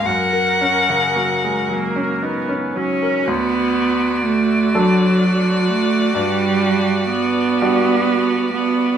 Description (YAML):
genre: classical, slow romantic movement for piano quartet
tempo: 36-45 BPM (dotted quarters)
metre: 6/8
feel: rubato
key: F# major, D major from 3.3 s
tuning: A4 = 440 Hz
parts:
  - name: rich violin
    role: melody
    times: 0.0-9.0 s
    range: D5 to F#5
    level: -22 LUFS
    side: left 3 dB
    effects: none
  - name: rich cello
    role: second line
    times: 0.0-9.0 s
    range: F#3 to A#4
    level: -18 LUFS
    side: right 3 dB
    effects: none
  - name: bright grand piano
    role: accompaniment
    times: 0.0-9.0 s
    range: D2 to A#4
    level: -22 LUFS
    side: left 1 dB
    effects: none
  - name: rich viola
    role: accompaniment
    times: 1.2-9.0 s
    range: A#3 to F#4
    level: -24 LUFS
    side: right 1 dB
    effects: none
room: wet stone room reverb, RT60 1.0 s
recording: none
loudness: -15 LUFS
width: side -8 dB against mid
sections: 0.0-3.3 A section; 3.3-9.0 B section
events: none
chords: 0.0 F#; 3.3 D; 6.1 Gmaj7